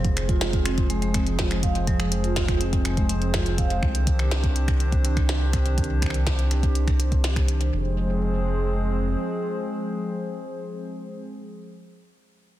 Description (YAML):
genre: IDM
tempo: 123 BPM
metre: 4/4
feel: straight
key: F dorian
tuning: A4 = 444 Hz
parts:
  - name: hollow soft pad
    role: sustained chords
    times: 0.0-11.4 s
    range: Eb3 to C5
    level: -29 LUFS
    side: equal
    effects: chorus, vintage 12-bit sampler grit
  - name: vibraphone with soft mallets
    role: arpeggios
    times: 0.0-3.8 s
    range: F3 to F5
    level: -29 LUFS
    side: right 3 dB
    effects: tape echo
  - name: round analog bass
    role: bass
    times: 0.0-9.2 s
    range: F1 to C2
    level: -24 LUFS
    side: equal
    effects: tube saturation
  - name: electronic kick drum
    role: drums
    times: 0.0-7.5 s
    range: none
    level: -25 LUFS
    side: equal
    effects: none
  - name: glitchy drum kit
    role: drums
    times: 0.0-7.7 s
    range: finger snaps, hi-hat, snare drum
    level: -31 LUFS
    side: equal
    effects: soft clipping on snare, tape echo
room: light reverb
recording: dense, heavily limited modern master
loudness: -21 LUFS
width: side -14 dB against mid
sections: 0.0-7.7 A section; 7.7-11.6 B section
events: filter sweep on analog synth bass 0.0-7.7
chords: 0.0 Fm; 3.8 Cmadd9; 7.7 Fm